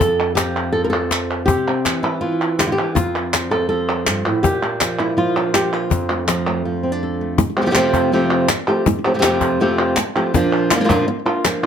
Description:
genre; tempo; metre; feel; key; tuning
flamenco; 163 BPM; 4/4; straight; F major; A4 = 440 Hz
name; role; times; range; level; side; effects
flamenco guitar; melody; 0.0-11.7 s; F2 to Bb4; -17 LUFS; right 1 dB; slapback echo, plate reverb
cajon; percussion; 0.0-11.6 s; none; -20 LUFS; left 5 dB; none
palmas hand claps; percussion; 0.2-11.7 s; none; -22 LUFS; right 1 dB; none
room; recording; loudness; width
moderate studio reverb, RT60 0.6 s; none; -16 LUFS; side -8 dB against mid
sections
0.0-7.4 A section; 7.4-11.7 B section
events
break 6.7-7.4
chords
0.0 N.C.; 1.5 C; 3.0 F; 4.4 Bb; 5.9 F6; 7.4 Fadd9; 10.3 Bb

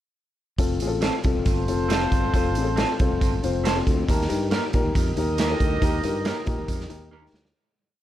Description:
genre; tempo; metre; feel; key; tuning
uptempo 1960s-style soul; 138 BPM; 4/4; straight; F mixolydian; A4 = 441 Hz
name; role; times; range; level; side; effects
dark grand piano; accompaniment; 0.6-7.5 s; C4 to C6; -27 LUFS; left 6 dB; none
modern bright fingered electric bass; bass; 0.6-7.5 s; F1 to Bb2; -28 LUFS; equal; none
raw garage drum kit; drums; 0.6-7.5 s; hi-hat, kick drum, snare drum; -24 LUFS; equal; none
electric guitar through a small old amp; stabs; 1.0-7.2 s; A3 to Bb4; -29 LUFS; right 4 dB; tape echo
warm horn section; second line; 1.5-7.3 s; F4 to Eb5; -30 LUFS; right 2 dB; none
room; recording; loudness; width
little or no reverb; dark, warm production; -21 LUFS; side -12 dB against mid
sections
0.6-7.5 verse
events
grand piano fill 3.4-4.1; fade-out 5.8-7.5; drum fill 7.1-7.5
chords
0.6 F; 4.1 Eb

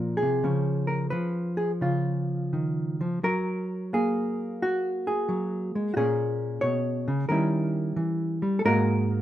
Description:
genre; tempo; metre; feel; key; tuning
solo jazz; 88 BPM; 4/4; swing 67% on 8ths, rubato; F# major from 3.2 s; A4 = 440 Hz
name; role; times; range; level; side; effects
hollow-body jazz guitar; solo; 0.0-9.2 s; G#2 to C#5; -24 LUFS; equal; none
room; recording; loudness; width
light reverb; minimal, uncompressed stereo recording; -24 LUFS; side -12 dB against mid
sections
0.0-3.2 A section; 3.2-9.2 B section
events
none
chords
0.4 Db7; 3.2 F#add9; 6.0 A#m7; 7.3 D#7b9; 8.6 G#sus2

